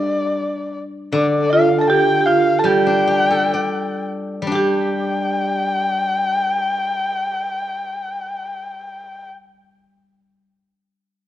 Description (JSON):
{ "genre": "chinese traditional, Chinese chamber ensemble", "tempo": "55-84 BPM", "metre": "2/4", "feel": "rubato", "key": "unclear", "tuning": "A4 = 440 Hz", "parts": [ { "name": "dark erhu", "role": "melody", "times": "0.0-9.3 s", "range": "D5 to A5", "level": "-20 LUFS", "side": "left 2 dB", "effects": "none" }, { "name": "marimba with medium hard mallets", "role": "second line", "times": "0.0-9.3 s", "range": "D4 to A4", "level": "-20 LUFS", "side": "right 4 dB", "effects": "none" }, { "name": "steel-string zither", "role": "accompaniment", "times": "0.0-10.5 s", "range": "D3 to D5", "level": "-22 LUFS", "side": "left 2 dB", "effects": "none" } ], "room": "moderate recital hall reverb, RT60 1.6 s", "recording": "worn, warbling old tape, cassette tape, warbly pitch drift", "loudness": "-16 LUFS", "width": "side -12 dB against mid", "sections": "0.0-4.5 A section; 4.5-8.8 B section", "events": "slowing down 1.1-4.5", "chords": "none" }